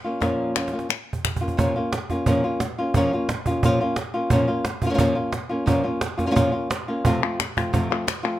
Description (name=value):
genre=flamenco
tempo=175 BPM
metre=4/4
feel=straight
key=Bb minor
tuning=A4 = 440 Hz
part: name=flamenco guitar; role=melody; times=0.0-8.4 s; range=F2 to F4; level=-22 LUFS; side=left 1 dB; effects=none
part: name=cajon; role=percussion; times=0.2-8.3 s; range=none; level=-25 LUFS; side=right 2 dB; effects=none
part: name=palmas hand claps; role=percussion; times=0.2-1.4, 7.2-8.4 s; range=none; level=-26 LUFS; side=left 9 dB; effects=none
room=light reverb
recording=close, detailed microphones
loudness=-20 LUFS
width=side -13 dB against mid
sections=0.0-1.6 A section; 1.6-8.4 A section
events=drum fill 0.6-1.6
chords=0.0 Bbm; 7.1 F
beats=| 0.21 0.56 0.90 1.24 | 1.58 1.93 2.27 2.61 | 2.95 3.29 3.63 3.98 | 4.32 4.66 5.00 5.34 | 5.68 6.03 6.37 6.71 | 7.05 7.40 7.74 8.08